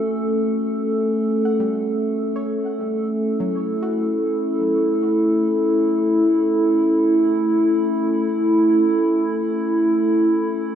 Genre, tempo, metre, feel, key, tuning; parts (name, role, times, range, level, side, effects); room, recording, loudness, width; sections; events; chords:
ambient; free time; A mixolydian; A4 = 440 Hz
warbly tape-like pad; sustained chords; 0.0-10.8 s; A3 to A4; -17 LUFS; equal; chorus, built-in reverb
soft round pluck; arpeggios; 1.5-7.5 s; F#3 to F#5; -35 LUFS; left 1 dB; chorus, diffuse ambient delay
wet scoring stage reverb, RT60 2.0 s; -17 LUFS; side -9 dB against mid
0.3-10.8 A section
fade-in on synth pluck 0.3-10.8
0.3 A7